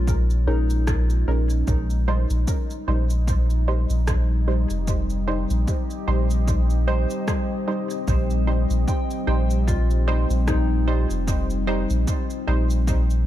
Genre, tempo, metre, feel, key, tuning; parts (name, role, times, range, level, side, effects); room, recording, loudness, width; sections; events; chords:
ambient dub; 75 BPM; 4/4; swing 56% on 16ths; A4 = 442 Hz
deep dark ambient pad; sustained chords; 0.0-13.3 s; G3 to Eb5; -29 LUFS; left 1 dB; chorus, built-in reverb
soft synth bell; arpeggios; 0.0-13.3 s; Eb4 to G5; -33 LUFS; left 3 dB; chorus, low-pass filter, dub echo
soft dub sub bass; bass; 0.0-13.3 s; F1 to Bb1; -21 LUFS; equal
electronic kick drum; drums; 0.1-13.1 s; -25 LUFS; equal; overdrive
electronic shaker and rim click; drums; 0.1-13.2 s; -35 LUFS; right 1 dB; dub echo
filtered dub chord stab; stabs; 0.5-12.7 s; G3 to C5; -30 LUFS; right 3 dB; chorus, dub echo
digital ambience; dark, warm production; -20 LUFS; side -13 dB against mid
0.0-13.3 A section
0.0 Bbm7; 1.7 Cm